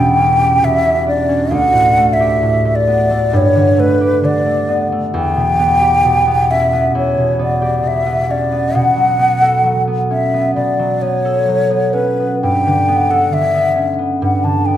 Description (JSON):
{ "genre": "classical, impressionist duo for flute and harp", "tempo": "66 BPM", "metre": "4/4", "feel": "rubato", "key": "E dorian", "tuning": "A4 = 440 Hz", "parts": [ { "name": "mellow hollow concert flute", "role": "melody", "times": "0.0-14.8 s", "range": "B4 to A5", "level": "-14 LUFS", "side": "left 1 dB", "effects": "none" }, { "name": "concert harp", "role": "accompaniment", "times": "0.0-14.8 s", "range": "D2 to A4", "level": "-15 LUFS", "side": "right 1 dB", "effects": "none" } ], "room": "wet recital hall reverb, RT60 1.5 s", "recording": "none", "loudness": "-12 LUFS", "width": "side -11 dB against mid", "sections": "0.0-14.8 A section", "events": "none", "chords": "0.0 Em6; 1.5 Dsus4; 3.3 Gadd9; 5.1 Em; 8.8 B5; 12.4 Gadd9", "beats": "0.62 | 1.52 2.43 3.34 4.24 | 5.14 6.04 6.95 7.85 | 8.76 9.66 10.55 11.46 | 12.42 13.33 14.21" }